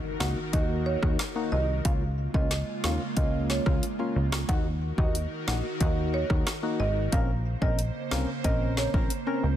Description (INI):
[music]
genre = dancehall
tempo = 91 BPM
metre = 4/4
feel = straight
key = Eb dorian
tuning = A4 = 440 Hz
[part]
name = airy breathy pad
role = sustained chords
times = 0.0-9.6 s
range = Db3 to C5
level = -35 LUFS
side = right 1 dB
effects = chorus, sidechain pumping
[part]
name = impact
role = sound effects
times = 0.0-1.9 s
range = none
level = -45 LUFS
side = equal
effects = none
[part]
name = marimba with medium mallets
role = melody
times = 0.2-8.9 s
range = Db5 to Gb5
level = -35 LUFS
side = right 3 dB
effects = digital delay
[part]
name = percussive organ stab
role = accompaniment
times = 0.2-9.5 s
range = Bb3 to Bb4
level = -33 LUFS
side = left 3 dB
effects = chorus, sidechain pumping
[part]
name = plucky analog bass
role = bass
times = 0.2-9.6 s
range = Ab1 to Eb2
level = -28 LUFS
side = equal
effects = none
[part]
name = deep house drum kit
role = drums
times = 0.2-9.3 s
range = hi-hat, kick drum, rim click, snare drum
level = -28 LUFS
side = equal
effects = soft clipping on snare
[sound]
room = little or no reverb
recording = dense, heavily limited modern master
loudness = -25 LUFS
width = side -11 dB against mid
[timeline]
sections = 0.0-9.6 A section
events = impact 0.0-1.9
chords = 0.0 Ebm; 1.9 Db6; 4.5 Ebm; 7.1 Bbmadd9